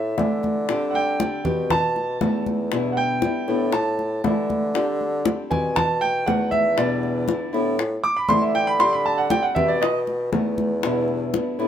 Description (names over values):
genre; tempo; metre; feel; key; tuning
latin, Cuban son and guajira; 118 BPM; 4/4; straight; E minor; A4 = 440 Hz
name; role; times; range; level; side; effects
clear concert grand piano; arpeggios; 0.0-10.0 s; D5 to D6; -22 LUFS; right 2 dB; none
warm bassoon; bass; 0.0-11.7 s; E2 to D3; -25 LUFS; left 1 dB; none
nylon-string guitar; accompaniment; 0.2-11.7 s; B2 to G4; -27 LUFS; left 2 dB; none
bongos; percussion; 0.2-11.7 s; none; -28 LUFS; left 6 dB; none
congas; percussion; 0.2-11.6 s; none; -26 LUFS; right 1 dB; none
room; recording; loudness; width
light reverb; minimal, uncompressed stereo recording; -19 LUFS; side -9 dB against mid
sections
0.0-11.7 A section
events
grand piano solo 0.0-11.7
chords
0.0 Am7; 0.7 D7sus4; 1.7 B7; 2.7 Em7; 3.7 Am7; 4.8 D7sus4; 5.8 B7; 6.8 Em7; 7.8 Am7; 8.8 D7sus4; 9.8 B7; 10.8 Em7